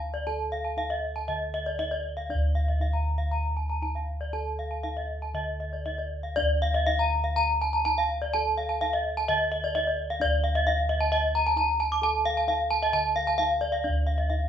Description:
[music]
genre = Balinese gamelan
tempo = 118-132 BPM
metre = 4/4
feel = straight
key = D pelog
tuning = A4 = 442 Hz
[part]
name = gamelan-type bossed gongs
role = bass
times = 0.0-14.5 s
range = D2 to A4-30c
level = -30 LUFS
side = equal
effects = none
[part]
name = gamelan-type bronze metallophone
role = arpeggios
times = 0.1-14.4 s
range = D5 to D6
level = -26 LUFS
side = equal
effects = none
[sound]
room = moderate large studio reverb, RT60 0.9 s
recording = band playing live in one room, nothing above 8.0 kHz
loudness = -24 LUFS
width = side -9 dB against mid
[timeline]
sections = 0.0-10.2 A section; 10.2-14.5 B section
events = none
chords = none

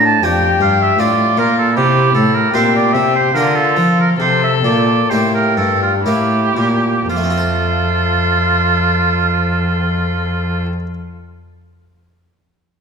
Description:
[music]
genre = classical, baroque-style sonata movement with continuo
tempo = 56-79 BPM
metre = 3/4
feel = straight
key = F major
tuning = A4 = 439 Hz
[part]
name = dark violin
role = melody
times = 0.0-10.6 s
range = D4 to A4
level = -20 LUFS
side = left 9 dB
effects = none
[part]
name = clear oboe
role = second line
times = 0.0-10.7 s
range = F4 to A5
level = -16 LUFS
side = right 4 dB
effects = none
[part]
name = harpsichord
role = accompaniment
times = 0.0-10.9 s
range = F2 to C5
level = -21 LUFS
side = left 1 dB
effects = none
[part]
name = warm cello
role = bass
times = 0.0-10.7 s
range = F2 to F3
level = -17 LUFS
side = equal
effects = none
[sound]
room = wet concert hall reverb, RT60 1.9 s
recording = none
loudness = -12 LUFS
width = side -6 dB against mid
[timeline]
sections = 0.0-7.1 A section; 7.1-10.3 B section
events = slowing down 0.6-7.1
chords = 0.0 Gm; 1.8 C; 3.4 Bb/D; 4.2 C7; 7.1 F

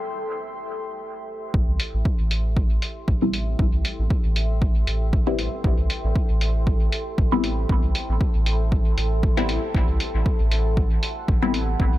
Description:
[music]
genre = dub techno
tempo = 117 BPM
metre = 4/4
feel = swing 55% on 16ths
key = A dorian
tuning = A4 = 439 Hz
[part]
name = deep dark ambient pad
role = sustained chords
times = 0.0-12.0 s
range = A4 to C6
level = -32 LUFS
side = equal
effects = chorus, built-in reverb, sidechain pumping
[part]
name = filtered dub chord stab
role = stabs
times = 0.0-12.0 s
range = G3 to E4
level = -27 LUFS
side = left 3 dB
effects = phaser, sidechain pumping, dub echo
[part]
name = soft dub sub bass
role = bass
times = 1.5-12.0 s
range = A1 to C2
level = -24 LUFS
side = equal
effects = sidechain pumping
[part]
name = electronic kick drum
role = drums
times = 1.5-11.9 s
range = none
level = -22 LUFS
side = equal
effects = overdrive
[part]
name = electronic hi-hat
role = drums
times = 1.8-11.7 s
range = none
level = -29 LUFS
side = equal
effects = none
[sound]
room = little or no reverb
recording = low-pass filter, faint mains hum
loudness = -20 LUFS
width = side -15 dB against mid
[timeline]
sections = 0.0-1.5 A section; 1.5-12.0 B section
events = none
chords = 0.0 Am7

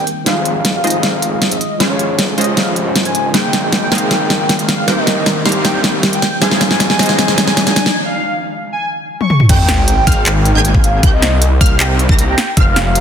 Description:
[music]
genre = future bass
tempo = 156 BPM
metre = 4/4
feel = half-time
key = Ab major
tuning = A4 = 440 Hz
[part]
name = warm velvety synth lead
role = melody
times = 0.0-13.0 s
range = Db5 to Db6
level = -20 LUFS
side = left 1 dB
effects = chorus, sidechain pumping, dub echo
[part]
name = overdriven tine electric piano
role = accompaniment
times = 0.0-7.8 s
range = Eb3 to G5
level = -22 LUFS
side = right 3 dB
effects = fast tremolo, sidechain pumping, tape echo
[part]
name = ethereal airy pad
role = sustained chords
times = 0.0-8.0 s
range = Db3 to G5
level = -26 LUFS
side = left 1 dB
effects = ensemble chorus, built-in reverb, sidechain pumping
[part]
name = supersaw stab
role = riff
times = 0.0-13.0 s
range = Ab3 to Bb5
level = -20 LUFS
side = right 1 dB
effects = analog chorus, sidechain pumping, low-pass filter
[part]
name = wide detuned saw bass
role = bass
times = 0.0-13.0 s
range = F1 to C2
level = -18 LUFS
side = equal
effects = chorus, sidechain pumping, high-pass filter
[part]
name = pop drum kit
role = drums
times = 0.1-13.0 s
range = crash cymbal, handclaps, hi-hat, snare drum, toms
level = -15 LUFS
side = equal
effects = small room reverb
[part]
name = riser and sub drop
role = sound effects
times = 6.2-11.0 s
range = none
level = -22 LUFS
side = left 1 dB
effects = none
[part]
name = wide unison pluck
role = arpeggios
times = 9.5-13.0 s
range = F6 to Bb6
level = -22 LUFS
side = right 1 dB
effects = phaser, sidechain pumping, tape echo
[part]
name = electronic kick drum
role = drums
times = 9.5-12.6 s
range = none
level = -12 LUFS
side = equal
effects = small room reverb
[sound]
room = moderate lush hall reverb, RT60 1.9 s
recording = dense, heavily limited modern master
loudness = -11 LUFS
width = side -8 dB against mid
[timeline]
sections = 0.0-9.5 A section; 9.5-13.0 B section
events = build-up 0.0-9.5; drum fill 0.0-8.0, 9.2; filter sweep on ambient pad 0.0-9.5; break 8.0-9.5; drop 9.5-13.0; impact 9.5-11.0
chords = 0.1 Fm7; 1.6 Dbmaj7/F; 3.3 Abmaj9; 4.9 Cm7; 6.2 Fm7; 7.8 Dbmaj7; 9.5 Abmaj9; 11.0 Cm7; 12.4 Fm7

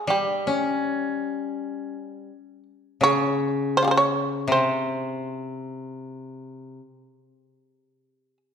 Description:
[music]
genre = japanese traditional, Japanese chamber music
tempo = free time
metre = none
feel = none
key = unclear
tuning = A4 = 443 Hz
[part]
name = shamisen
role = melody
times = 0.0-8.4 s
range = Db4 to Db5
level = -22 LUFS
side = right 2 dB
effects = none
[part]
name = koto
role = accompaniment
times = 0.1-6.8 s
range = C3 to Db4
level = -26 LUFS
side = left 2 dB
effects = none
[sound]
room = wet recital hall reverb, RT60 1.7 s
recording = recorded in a church or concert hall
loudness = -22 LUFS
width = side -7 dB against mid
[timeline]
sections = 0.0-8.5 A section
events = none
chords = none

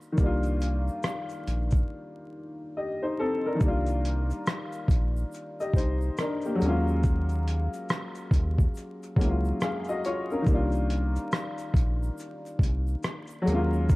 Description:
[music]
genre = lo-fi hip hop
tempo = 70 BPM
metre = 4/4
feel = swing 62% on 16ths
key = unclear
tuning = A4 = 440 Hz
[part]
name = warm upright piano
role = accompaniment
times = 0.0-14.0 s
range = Eb3 to F5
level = -30 LUFS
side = left 1 dB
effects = cassette tape, low-pass filter
[part]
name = egg shaker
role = percussion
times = 0.0-14.0 s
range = none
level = -60 LUFS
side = right 6 dB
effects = none
[part]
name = round analog bass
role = bass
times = 0.2-14.0 s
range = Bb1 to Eb2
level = -27 LUFS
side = equal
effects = none
[part]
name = dusty soul sampler-style drum kit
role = drums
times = 0.2-14.0 s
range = hi-hat, kick drum, rim click, shaker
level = -26 LUFS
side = equal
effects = overdrive
[sound]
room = light reverb, digital ambience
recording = dark, warm production, vinyl crackle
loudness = -25 LUFS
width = side -21 dB against mid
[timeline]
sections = 0.0-3.6 A section; 3.6-14.0 B section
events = break 1.9-3.6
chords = 0.0 Cm11; 6.6 Ebm11; 10.5 Cm11

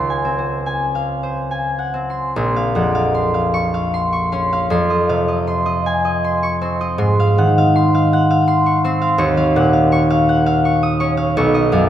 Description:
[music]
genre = classical, solo harp piece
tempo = 68-84 BPM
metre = 3/4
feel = rubato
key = unclear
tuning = A4 = 438 Hz
[part]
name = concert harp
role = solo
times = 0.0-11.9 s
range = Bb1 to Eb6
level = -14 LUFS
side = equal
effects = none
[sound]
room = wet concert hall reverb, RT60 2.5 s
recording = none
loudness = -14 LUFS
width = side -10 dB against mid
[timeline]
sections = 0.0-2.4 A section; 2.4-11.9 B section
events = none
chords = 0.0 Dbmaj7; 2.4 Bbmadd9; 4.7 Fm7; 7.0 Ab6; 9.2 Ebm9; 11.3 Cbadd9

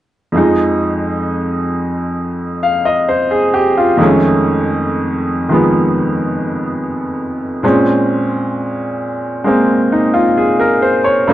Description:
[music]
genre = solo jazz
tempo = 66 BPM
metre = 4/4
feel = swing 69% on 8ths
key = F minor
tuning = A4 = 440 Hz
[part]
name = bright upright piano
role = solo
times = 0.3-11.3 s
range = F2 to F5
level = -12 LUFS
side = equal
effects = none
[sound]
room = moderate club reverb, RT60 0.6 s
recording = dark, warm production, nothing above 10.5 kHz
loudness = -12 LUFS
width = side -13 dB against mid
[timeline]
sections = 0.3-11.3 A section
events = none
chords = 0.3 Fm7; 4.0 F7alt; 7.6 Bbm9

